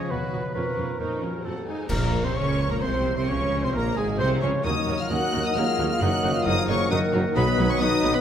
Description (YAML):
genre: classical, dramatic, fast romantic movement for symphony orchestra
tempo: 133 BPM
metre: 3/4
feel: rubato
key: Bb minor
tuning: A4 = 440 Hz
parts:
  - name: warm symphonic violin section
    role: melody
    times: 0.0-8.2 s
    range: Bb4 to Gb6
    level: -31 LUFS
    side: left 3 dB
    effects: none
  - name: mellow hollow concert flute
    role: second line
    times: 0.0-8.2 s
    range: Gb4 to Db6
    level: -34 LUFS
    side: left 2 dB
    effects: none
  - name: warm clarinet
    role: second line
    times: 0.0-8.2 s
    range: Ab4 to Db5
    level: -33 LUFS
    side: equal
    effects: none
  - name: warm cor anglais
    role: second line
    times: 0.0-8.2 s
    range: F#4 to Gb5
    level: -33 LUFS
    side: right 2 dB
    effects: none
  - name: warm symphonic violin section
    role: second line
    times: 0.0-8.1 s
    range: D#4 to Db5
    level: -38 LUFS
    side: left 2 dB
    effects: none
  - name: dark bassoon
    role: accompaniment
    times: 0.0-8.2 s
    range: Eb3 to Db4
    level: -32 LUFS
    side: right 2 dB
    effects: none
  - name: mellow French horn section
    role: sustained chords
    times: 0.0-8.2 s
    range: F3 to Gb4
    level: -32 LUFS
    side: left 4 dB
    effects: none
  - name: concert harp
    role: arpeggios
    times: 0.0-8.2 s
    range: F2 to B5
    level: -32 LUFS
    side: left 6 dB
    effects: none
  - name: rich symphonic cello section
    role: bass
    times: 0.0-8.1 s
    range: Eb2 to Db3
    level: -31 LUFS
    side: right 3 dB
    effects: none
  - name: rich symphonic viola section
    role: accompaniment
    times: 0.1-8.1 s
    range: Gb3 to F#4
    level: -34 LUFS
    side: right 1 dB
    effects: none
  - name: rich symphonic double bass section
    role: bass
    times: 0.1-8.1 s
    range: Gb1 to F2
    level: -31 LUFS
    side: right 2 dB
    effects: none
  - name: dark trombone section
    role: sustained chords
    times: 1.9-8.2 s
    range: Ab2 to B3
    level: -33 LUFS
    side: right 4 dB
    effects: none
  - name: warm tuba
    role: bass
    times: 1.9-8.1 s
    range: Gb1 to Eb2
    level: -32 LUFS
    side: right 2 dB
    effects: none
  - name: clash cymbals and concert bass drum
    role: percussion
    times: 1.9-2.8 s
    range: none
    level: -34 LUFS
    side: equal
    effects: none
room: wet concert hall reverb, RT60 1.8 s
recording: none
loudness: -22 LUFS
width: side -9 dB against mid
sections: 0.0-1.9 A section; 1.9-8.2 B section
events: band accent 1.9-2.4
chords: 0.1 B/D#; 0.6 Bbm/F; 1.4 F; 1.9 Bbm; 4.7 Ebm7; 6.0 Ebm/Gb; 7.4 B